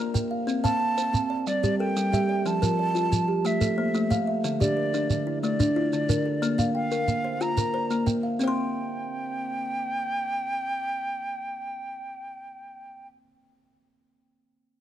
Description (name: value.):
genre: southern african traditional, mbira-style interlocking cycle.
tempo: 121 BPM (dotted quarters).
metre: 12/8.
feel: straight.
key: C mixolydian.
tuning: A4 = 441 Hz.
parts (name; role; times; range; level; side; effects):
breathy bright wooden flute; melody; 0.0-13.1 s; D5 to Bb5; -29 LUFS; right 1 dB; slapback echo.
buzzing kalimba; arpeggios; 0.0-13.2 s; D3 to C6; -28 LUFS; left 5 dB; none.
kalimba; arpeggios; 0.0-13.2 s; D3 to C6; -29 LUFS; right 4 dB; none.
shekere; percussion; 0.2-8.6 s; none; -27 LUFS; right 2 dB; none.
room: light reverb, studio reverb.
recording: dry, close 1970s-style studio recording.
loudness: -24 LUFS.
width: side -11 dB against mid.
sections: 0.0-8.4 A section; 8.4-12.3 B section.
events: none.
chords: 0.5 C5; 1.5 Gm; 2.5 F; 3.4 Am; 4.4 Dm; 6.4 Bb; 8.4 C5.